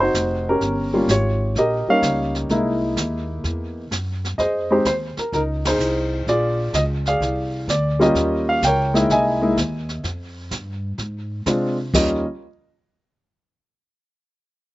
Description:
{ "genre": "jazz piano trio", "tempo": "127 BPM", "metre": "4/4", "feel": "swing 68% on 8ths", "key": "unclear", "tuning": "A4 = 440 Hz", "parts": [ { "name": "warm upright piano", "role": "melody", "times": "0.0-12.2 s", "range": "G3 to G#5", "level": "-19 LUFS", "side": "equal", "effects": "none" }, { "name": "upright bass", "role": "bass", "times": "0.0-12.2 s", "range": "F1 to C3", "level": "-25 LUFS", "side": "equal", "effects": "none" }, { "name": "jazz brush drum kit", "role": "drums", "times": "0.1-12.3 s", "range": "brushed snare drum, crash cymbal, hi-hat, kick drum, ride cymbal, snare drum", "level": "-26 LUFS", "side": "right 1 dB", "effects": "none" } ], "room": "little or no reverb", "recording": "recorded outdoors, with no room sound, nothing above 7.7 kHz", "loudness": "-18 LUFS", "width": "side -18 dB against mid", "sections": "0.0-11.9 A section; 11.9-13.8 B section", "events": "band accent 5.6", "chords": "0.0 Adim7 (rootless); 0.6 Eb9; 2.5 C7alt; 4.4 Fm7; 6.3 Bb9; 8.2 Eb9; 9.1 C7alt; 10.0 Fmadd9; 11.9 N.C." }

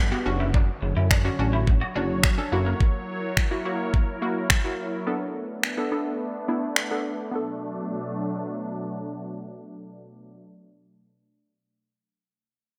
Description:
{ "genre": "dance-pop", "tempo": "106 BPM", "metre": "4/4", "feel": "straight", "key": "B minor", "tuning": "A4 = 441 Hz", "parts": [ { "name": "sweeping resonant pad", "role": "sustained chords", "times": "0.0-10.4 s", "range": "B2 to F#5", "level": "-34 LUFS", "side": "equal", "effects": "chorus, sidechain pumping, low-pass filter" }, { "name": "chorused synth bass", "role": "bass", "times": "0.0-2.7 s", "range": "F#1 to F#2", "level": "-28 LUFS", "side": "equal", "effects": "sidechain pumping" }, { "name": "downlifter", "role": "sound effects", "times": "0.0-2.8 s", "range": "none", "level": "-47 LUFS", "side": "equal", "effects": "none" }, { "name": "analog pluck", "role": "accompaniment", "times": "0.1-11.1 s", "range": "A#3 to A4", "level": "-32 LUFS", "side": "equal", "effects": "chorus, sidechain pumping, low-pass filter" }, { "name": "twelve-string electric guitar", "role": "riff", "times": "0.1-2.8 s", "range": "A#3 to F#4", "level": "-36 LUFS", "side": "equal", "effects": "ensemble chorus, low-pass filter" }, { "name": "smooth R&B drum kit", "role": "drums", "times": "0.5-6.9 s", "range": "finger snaps, kick drum", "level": "-24 LUFS", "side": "equal", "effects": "gated reverb" } ], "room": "moderate lush hall reverb, RT60 1.7 s", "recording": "bright 1980s-style digital production", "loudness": "-26 LUFS", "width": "mono", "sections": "0.0-7.3 A section; 7.3-9.6 B section", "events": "filter sweep 0.0-7.3", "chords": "0.3 Dmaj7/F#; 2.5 F#7; 5.1 Bm7" }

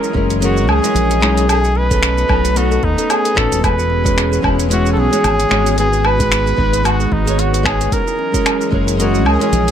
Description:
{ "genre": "sunset chillout", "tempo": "112 BPM", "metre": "4/4", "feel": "swing 56% on 16ths", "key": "E major", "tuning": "A4 = 440 Hz", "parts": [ { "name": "clear flugelhorn", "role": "melody", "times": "0.0-9.7 s", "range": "D#4 to B4", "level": "-18 LUFS", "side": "equal", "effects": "analog delay" }, { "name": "flamenco guitar", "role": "accompaniment", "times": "0.0-9.7 s", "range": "G#3 to D#5", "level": "-21 LUFS", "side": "moving between left 5 dB and right 4 dB", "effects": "auto-pan, vintage 12-bit sampler grit, analog delay" }, { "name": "airy breathy pad", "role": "sustained chords", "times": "0.0-9.7 s", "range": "E3 to D#5", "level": "-23 LUFS", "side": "left 1 dB", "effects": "chorus" }, { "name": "kalimba", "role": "arpeggios", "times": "0.0-9.7 s", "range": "C#4 to C#5", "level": "-25 LUFS", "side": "right 4 dB", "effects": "analog delay" }, { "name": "deep house drum kit", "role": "drums", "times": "0.0-9.7 s", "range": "finger snaps, hi-hat, shaker, woodblock", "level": "-20 LUFS", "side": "equal", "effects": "overdrive" }, { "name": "fingered electric bass", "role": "bass", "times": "0.1-9.7 s", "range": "E1 to D#2", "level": "-17 LUFS", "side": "equal", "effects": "none" }, { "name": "electronic kick drum", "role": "drums", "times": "0.1-8.8 s", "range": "none", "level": "-21 LUFS", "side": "equal", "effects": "overdrive" } ], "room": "moderate spring reverb, RT60 1.3 s, digital ambience", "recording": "echo-heavy mix", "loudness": "-12 LUFS", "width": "side -9 dB against mid", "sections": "0.0-9.7 A section", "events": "none", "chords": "0.0 F#13; 1.5 B9; 3.6 E69; 5.8 G#m7; 7.9 F#13" }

